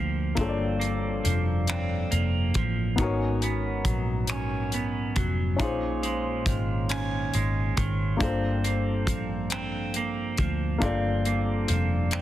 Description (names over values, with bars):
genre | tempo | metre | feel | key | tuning
slow six-eight R&B | 46 BPM (dotted quarters) | 6/8 | straight | unclear | A4 = 440 Hz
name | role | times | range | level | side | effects
clean electric guitar | second line | 0.0-12.2 s | G2 to Db4 | -30 LUFS | right 4 dB | none
dark grand piano | accompaniment | 0.0-12.2 s | Bb3 to D5 | -31 LUFS | left 4 dB | none
vintage muted fingered electric bass | bass | 0.0-12.2 s | F1 to D2 | -28 LUFS | equal | none
damped 70s drum kit | drums | 0.4-12.2 s | finger snaps, hi-hat, kick drum | -30 LUFS | equal | none
room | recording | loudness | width
light reverb | heavily compressed radio sound | -24 LUFS | side -13 dB against mid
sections
0.0-12.2 A section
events
none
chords
0.0 Gm11; 3.0 Abm11; 5.6 Bbm11; 8.2 Gm11